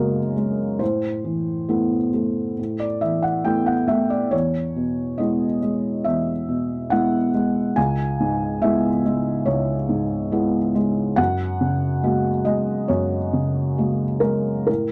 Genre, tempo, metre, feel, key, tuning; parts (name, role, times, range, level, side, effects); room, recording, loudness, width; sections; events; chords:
neoclassical minimalist piano; 70 BPM; 4/4; rubato; A4 = 441 Hz
felt-muted upright piano; solo; 0.0-14.9 s; C#2 to G#5; -22 LUFS; equal
light reverb; dry, close 1970s-style studio recording; -22 LUFS; mono
0.0-14.9 A section
0.0 F#add9; 0.8 Amadd9; 4.3 E; 7.8 C#m7; 11.2 F#add9